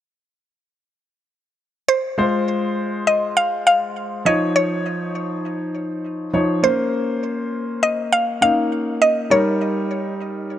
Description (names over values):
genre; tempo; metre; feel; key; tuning
pop; 101 BPM; 4/4; straight; F minor; A4 = 441 Hz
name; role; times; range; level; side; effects
mallet-like synth pluck; melody; 1.9-10.6 s; C5 to F5; -19 LUFS; equal; chorus, tape echo
clear concert grand piano; accompaniment; 2.2-10.6 s; F3 to Db5; -21 LUFS; left 1 dB; none
room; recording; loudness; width
moderate plate reverb, RT60 3.7 s; none; -18 LUFS; side -11 dB against mid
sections
0.0-2.2 A section; 2.2-10.6 B section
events
none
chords
0.0 N.C.; 2.2 Fm; 4.3 Dbadd9; 6.6 Bbmadd9; 9.3 Eb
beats
0.40 0.99 1.58 | 2.18 2.77 3.37 3.96 | 4.55 5.15 5.74 6.34 | 6.93 7.53 8.12 8.71 | 9.31 9.90 10.50